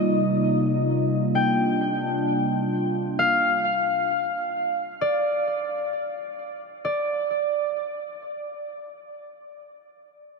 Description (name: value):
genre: hip hop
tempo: free time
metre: none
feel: none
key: unclear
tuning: A4 = 441 Hz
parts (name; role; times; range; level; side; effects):
- concert harp; melody; 0.0-8.7 s; D5 to G5; -25 LUFS; left 1 dB; low-pass filter, tape echo
- hollow soft pad; sustained chords; 0.0-3.2 s; C3 to F4; -24 LUFS; right 1 dB; chorus
room: wet huge ambient reverb, RT60 8.0 s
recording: dreamy mix soaked in reverb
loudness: -22 LUFS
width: side -4 dB against mid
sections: 0.0-6.8 A section; 6.8-10.4 B section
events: none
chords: 0.0 Eb69; 3.2 N.C.